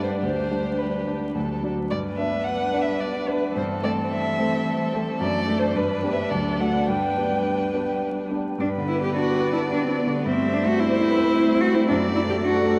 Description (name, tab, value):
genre	quick classical-period movement for piano quintet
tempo	108 BPM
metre	3/4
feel	straight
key	G major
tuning	A4 = 439 Hz
part	dark violin	melody	0.0-12.8 s	A4 to G5	-31 LUFS	equal	none
part	rich cello	second line	0.0-12.8 s	E3 to G4	-29 LUFS	equal	none
part	rich violin	second line	0.0-12.8 s	G4 to D5	-34 LUFS	equal	none
part	clear concert grand piano	accompaniment	0.0-12.8 s	D2 to D5	-28 LUFS	equal	none
part	warm viola	accompaniment	0.0-12.8 s	A3 to D4	-33 LUFS	equal	none
room	wet cathedral reverb, RT60 5.3 s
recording	in a vast, echoing space, vinyl crackle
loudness	-23 LUFS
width	mono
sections	0.0-8.6 A section; 8.6-12.8 B section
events	none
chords	0.2 G/D; 1.4 D; 1.9 G; 3.6 Am7/G; 5.2 D/F#; 5.8 G; 6.3 D; 6.9 G; 10.3 Am7/G; 11.9 D/F#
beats	| 0.23 0.79 1.35 | 1.91 2.46 3.02 | 3.57 4.12 4.67 | 5.21 5.76 6.32 | 6.88 7.45 8.03 | 8.60 9.16 9.71 | 10.26 10.80 11.35 | 11.89 12.45